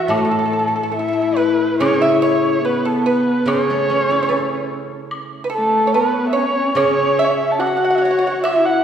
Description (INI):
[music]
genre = chinese traditional, Chinese chamber ensemble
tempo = 72 BPM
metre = 2/4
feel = rubato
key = A gong mode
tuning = A4 = 439 Hz
[part]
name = dark erhu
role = melody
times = 0.0-8.8 s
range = A4 to A5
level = -19 LUFS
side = equal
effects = none
[part]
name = pipa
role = second line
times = 0.0-8.8 s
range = A4 to F#5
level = -22 LUFS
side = right 3 dB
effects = none
[part]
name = rich horsehead fiddle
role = second line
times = 0.0-8.8 s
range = A3 to F#4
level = -20 LUFS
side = left 3 dB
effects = none
[part]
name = steel-string zither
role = accompaniment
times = 0.0-8.8 s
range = A2 to A4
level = -23 LUFS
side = right 2 dB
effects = none
[part]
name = woodblock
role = percussion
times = 0.1-8.6 s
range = none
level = -32 LUFS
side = left 1 dB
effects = none
[sound]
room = wet concert hall reverb, RT60 1.9 s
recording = heard from further back in the room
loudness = -15 LUFS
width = side -8 dB against mid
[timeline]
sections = 0.0-1.8 A section; 1.8-8.8 B section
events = none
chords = none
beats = | 0.11 0.96 | 1.81 2.65 | 3.48 4.30 | 5.11 5.93 | 6.76 7.60 | 8.44